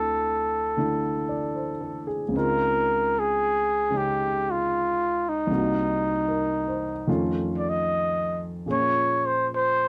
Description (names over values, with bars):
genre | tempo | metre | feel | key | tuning
jazz ballad | 76 BPM | 4/4 | swing 68% on 8ths | unclear | A4 = 440 Hz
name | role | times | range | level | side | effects
breathy trumpet | melody | 0.0-9.9 s | Eb4 to Eb5 | -26 LUFS | equal | none
warm grand piano | accompaniment | 0.0-9.9 s | C2 to D5 | -31 LUFS | equal | none
room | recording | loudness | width
light reverb | dry, close 1970s-style studio recording | -25 LUFS | mono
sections
0.0-9.9 A section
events
none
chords
0.0 D9; 2.3 Dbmaj9; 5.5 Cm7b5; 7.1 F7b13; 8.7 Bbm7